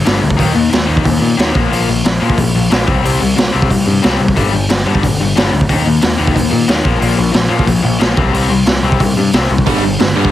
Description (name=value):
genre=punk rock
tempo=181 BPM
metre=4/4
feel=straight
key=unclear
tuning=A4 = 440 Hz
part: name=cranked stack guitar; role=riff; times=0.0-10.3 s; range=G2 to Eb4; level=-15 LUFS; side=left 6 dB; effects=overdrive
part: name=growling picked electric bass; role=bass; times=0.1-10.3 s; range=G1 to Bb2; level=-17 LUFS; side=right 1 dB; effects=overdrive
part: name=raw garage drum kit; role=drums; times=0.1-10.3 s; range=hi-hat, kick drum, snare drum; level=-14 LUFS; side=right 1 dB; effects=none
part: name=cranked stack guitar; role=riff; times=9.7-10.3 s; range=G2 to G3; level=-17 LUFS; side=right 14 dB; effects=overdrive
room=little or no reverb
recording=heavily compressed radio sound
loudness=-10 LUFS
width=side -13 dB against mid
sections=0.0-10.3 A section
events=none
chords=0.4 Eb5; 1.6 Bb5; 2.9 C5; 4.4 G5; 5.7 Eb5; 6.9 Bb5; 8.2 C5; 9.7 G5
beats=0.06 | 0.39 0.72 1.06 1.39 | 1.72 2.05 2.38 2.71 | 3.05 3.38 3.71 4.04 | 4.37 4.70 5.03 5.37 | 5.70 6.03 6.36 6.69 | 7.02 7.35 7.68 8.02 | 8.35 8.68 9.01 9.34 | 9.67 10.00